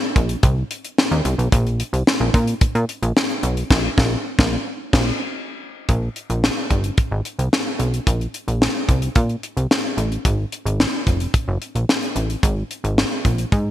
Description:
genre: early-eighties boogie funk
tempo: 110 BPM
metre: 4/4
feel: straight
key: unclear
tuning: A4 = 438 Hz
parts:
  - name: plucky analog bass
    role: bass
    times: 0.2-13.7 s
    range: F1 to Bb2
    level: -20 LUFS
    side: equal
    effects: none
  - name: tight funk drum kit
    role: drums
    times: 0.2-13.7 s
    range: crash cymbal, hi-hat, kick drum, snare drum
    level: -19 LUFS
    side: equal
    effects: gated reverb
room: light reverb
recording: bright 1980s-style digital production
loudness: -18 LUFS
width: side -13 dB against mid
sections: 0.0-5.9 A section; 5.9-13.7 B section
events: band accent 3.7-5.9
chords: none

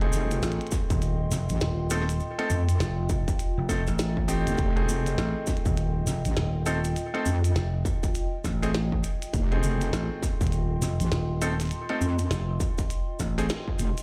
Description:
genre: glitch hop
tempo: 101 BPM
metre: 4/4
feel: swing 61% on 16ths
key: unclear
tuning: A4 = 441 Hz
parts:
  - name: dark analog pad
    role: sustained chords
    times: 0.0-14.0 s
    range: F4 to C6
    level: -39 LUFS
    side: equal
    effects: chorus, phaser, vintage 12-bit sampler grit, sidechain pumping
  - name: bright grand piano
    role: stabs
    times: 0.0-13.4 s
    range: A3 to A4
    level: -35 LUFS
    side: equal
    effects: sidechain pumping, digital delay
  - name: wobble bass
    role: bass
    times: 0.0-13.9 s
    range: F1 to F2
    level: -28 LUFS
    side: equal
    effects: chorus
  - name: glitchy drum kit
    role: drums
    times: 0.0-14.0 s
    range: hi-hat, snare drum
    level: -37 LUFS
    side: equal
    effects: small room ambience
  - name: maracas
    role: percussion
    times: 0.1-14.0 s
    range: none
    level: -42 LUFS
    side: equal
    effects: none
  - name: vintage slap bass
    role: bass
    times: 0.4-13.5 s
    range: Eb1 to A1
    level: -30 LUFS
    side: equal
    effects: none
  - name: electronic kick drum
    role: drums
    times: 0.7-13.8 s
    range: none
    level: -30 LUFS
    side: equal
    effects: distortion, small room ambience
room: digital ambience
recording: played on a big sound system in a bare room, large studio reverb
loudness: -27 LUFS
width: mono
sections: 0.0-14.0 A section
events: band accent 13.5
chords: 0.0 F7#9

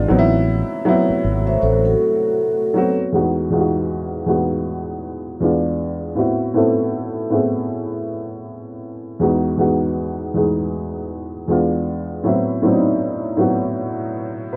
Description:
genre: lo-fi hip hop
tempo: 79 BPM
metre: 4/4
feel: swing 62% on 16ths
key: E major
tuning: A4 = 443 Hz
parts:
  - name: dark upright piano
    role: accompaniment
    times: 0.0-14.6 s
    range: E2 to B4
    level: -21 LUFS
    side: equal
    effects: none
  - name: deep dark ambient pad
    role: sustained chords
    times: 0.7-3.1 s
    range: C3 to F#4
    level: -33 LUFS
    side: equal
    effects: chorus, built-in reverb
  - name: mellow fretless electric bass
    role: bass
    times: 0.0-1.9 s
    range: G#1 to A1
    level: -21 LUFS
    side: equal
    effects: none
  - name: vibraphone with soft mallets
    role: second line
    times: 1.5-3.0 s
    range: F#4 to E5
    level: -21 LUFS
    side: equal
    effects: analog delay
room: moderate studio reverb, RT60 0.6 s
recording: rough home demo mix, low-pass filter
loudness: -19 LUFS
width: mono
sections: 0.0-3.1 A section; 3.1-14.6 B section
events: filter sweep 3.1-14.6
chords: 0.1 Am6; 3.1 Emaj7; 5.4 E7b9; 6.2 Am6; 9.2 Emaj7; 11.5 E7b9; 12.2 Am6

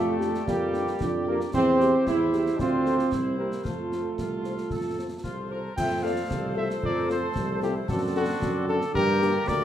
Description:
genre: military-style march for wind band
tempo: 113 BPM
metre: 2/4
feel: straight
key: F major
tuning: A4 = 441 Hz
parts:
  - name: mellow cornet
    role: melody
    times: 0.0-9.6 s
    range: F#4 to G5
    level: -32 LUFS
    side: equal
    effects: none
  - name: warm euphonium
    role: second line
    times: 0.0-5.5 s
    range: Bb3 to G4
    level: -34 LUFS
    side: right 3 dB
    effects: none
  - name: warm woodwind section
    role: second line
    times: 0.0-9.6 s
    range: E4 to D5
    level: -35 LUFS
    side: left 2 dB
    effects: none
  - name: mellow trombone section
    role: sustained chords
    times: 0.0-9.6 s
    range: D3 to E4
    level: -28 LUFS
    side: right 2 dB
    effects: none
  - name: warm tuba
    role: bass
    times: 0.0-9.6 s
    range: C2 to G2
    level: -30 LUFS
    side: right 2 dB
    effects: none
  - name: mellow French horn section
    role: accompaniment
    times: 0.2-9.3 s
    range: Bb3 to C5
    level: -33 LUFS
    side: left 5 dB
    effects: none
  - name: concert snare drum, concert bass drum and clash cymbals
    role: drums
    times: 0.2-9.6 s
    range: none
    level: -35 LUFS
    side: left 2 dB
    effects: none
  - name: mellow large flute ensemble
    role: second line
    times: 5.2-9.6 s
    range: D4 to E5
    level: -35 LUFS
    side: left 2 dB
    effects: none
room: moderate large studio reverb, RT60 0.8 s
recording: minimal, uncompressed stereo recording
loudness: -23 LUFS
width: side -10 dB against mid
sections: 0.0-5.8 A section; 5.8-9.6 B section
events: none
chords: 0.0 Gm7/F; 1.5 C/E; 2.6 Dm; 3.1 C7; 3.7 F; 7.9 D7/F#; 8.9 Gm

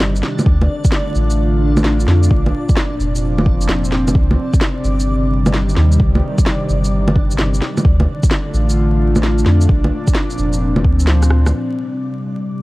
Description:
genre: future garage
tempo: 130 BPM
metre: 4/4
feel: swing 66% on 16ths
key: C dorian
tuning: A4 = 440 Hz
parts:
  - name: airy breathy pad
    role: sustained chords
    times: 0.0-12.6 s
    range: Bb2 to F4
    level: -20 LUFS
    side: equal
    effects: chorus, sidechain pumping
  - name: soft dub sub bass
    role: bass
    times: 0.0-11.5 s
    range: F1 to F2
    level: -15 LUFS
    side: equal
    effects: tube saturation, sidechain pumping
  - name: electronic snare drum, shaker, bongos and rim click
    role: drums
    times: 0.0-11.5 s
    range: none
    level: -20 LUFS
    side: equal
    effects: none
  - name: backwards swelling texture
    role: texture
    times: 0.0-11.5 s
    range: D4 to D5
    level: -29 LUFS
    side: equal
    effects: built-in reverb
  - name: electronic kick drum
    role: drums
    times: 0.5-11.0 s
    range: none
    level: -15 LUFS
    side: equal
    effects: none
room: digital ambience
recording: dark, warm production, vinyl crackle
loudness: -13 LUFS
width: side -20 dB against mid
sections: 0.0-11.5 A section; 11.5-12.6 B section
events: kick drops out 11.1-11.5; drum fill 11.2-11.5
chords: 0.5 Dm; 2.3 Bb; 4.2 Cm; 7.8 Dm; 9.7 Bb; 11.5 C5

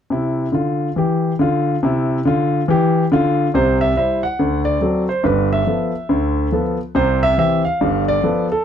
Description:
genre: jazz, stride piano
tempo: 140 BPM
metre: 4/4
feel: swing 62% on 8ths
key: C major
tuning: A4 = 441 Hz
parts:
  - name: clear grand piano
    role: solo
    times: 0.1-8.6 s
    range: G1 to F#5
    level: -15 LUFS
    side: equal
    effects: none
room: moderate studio reverb, RT60 0.6 s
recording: dark, warm production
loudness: -15 LUFS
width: side -8 dB against mid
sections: 0.1-3.5 A section; 3.5-8.6 B section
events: none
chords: 0.1 C; 4.4 D7; 5.3 G13; 7.0 C; 7.8 G9

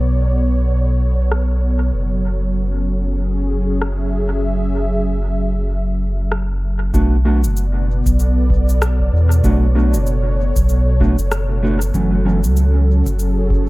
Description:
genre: ambient dub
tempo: 96 BPM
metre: 4/4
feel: swing 59% on 16ths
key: unclear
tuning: A4 = 441 Hz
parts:
  - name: warm analog pad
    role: sustained chords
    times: 0.0-13.7 s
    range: B2 to E5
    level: -22 LUFS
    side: equal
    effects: chorus
  - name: warm sub bass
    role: bass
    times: 0.0-13.7 s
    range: F#1 to E2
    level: -16 LUFS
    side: equal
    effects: none
  - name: electronic rim click and cabasa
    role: drums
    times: 1.3-13.3 s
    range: none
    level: -28 LUFS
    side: left 1 dB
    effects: low-pass filter on perc, small room ambience, low-pass filter on snare, dub echo
  - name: mellow electric guitar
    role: stabs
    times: 6.9-12.4 s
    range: E3 to F#4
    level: -21 LUFS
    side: right 1 dB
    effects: dub echo
  - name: electronic kick drum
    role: drums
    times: 6.9-13.7 s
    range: none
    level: -20 LUFS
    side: equal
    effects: small room ambience
room: digital ambience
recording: echo-heavy mix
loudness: -14 LUFS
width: side -20 dB against mid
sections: 0.0-6.9 A section; 6.9-13.7 B section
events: none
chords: 0.0 Bm7; 1.9 F#m7; 6.9 Bm7; 11.9 F#m7

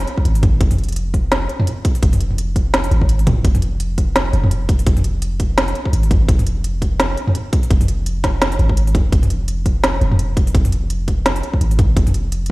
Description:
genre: half-time drum and bass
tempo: 169 BPM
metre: 4/4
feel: swing 57% on 16ths, half-time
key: F minor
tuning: A4 = 440 Hz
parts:
  - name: long sustained 808-style bass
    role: bass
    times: 0.0-12.5 s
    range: F1 to Ab1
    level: -18 LUFS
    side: equal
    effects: tube saturation
  - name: organic electronic drum kit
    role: drums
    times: 0.0-12.5 s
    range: hi-hat, snare drum, toms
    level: -19 LUFS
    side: equal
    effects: overdrive
  - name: electronic kick drum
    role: drums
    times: 0.2-12.0 s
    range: none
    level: -16 LUFS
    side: equal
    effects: none
room: light reverb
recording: played on a big sound system in a bare room, stone room reverb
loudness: -14 LUFS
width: side -21 dB against mid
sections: 0.0-12.5 A section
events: none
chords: none

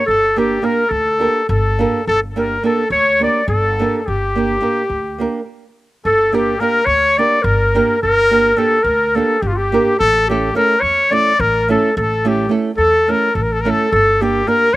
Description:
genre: balkan folk, Balkan wedding band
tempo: 212 BPM (eighths)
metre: 7/8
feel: straight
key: G dorian sharp4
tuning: A4 = 440 Hz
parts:
  - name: breathy clarinet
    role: melody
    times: 0.0-14.8 s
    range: F4 to D5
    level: -16 LUFS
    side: equal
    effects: none
  - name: bright trumpet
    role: second line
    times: 0.0-14.8 s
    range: F4 to D5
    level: -20 LUFS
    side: left 4 dB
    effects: slapback echo
  - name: upright bass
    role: bass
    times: 0.1-14.8 s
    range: G1 to E2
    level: -22 LUFS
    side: equal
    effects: none
  - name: nylon-string guitar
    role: accompaniment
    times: 0.4-14.7 s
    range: A3 to Bb4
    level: -19 LUFS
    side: right 4 dB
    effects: slapback echo
room: little or no reverb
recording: recorded outdoors, with no room sound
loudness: -13 LUFS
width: side -17 dB against mid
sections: 0.0-6.0 A section; 6.0-14.8 B section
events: stop 5.5-6.0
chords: 0.0 Gm; 10.0 A; 13.9 Gm

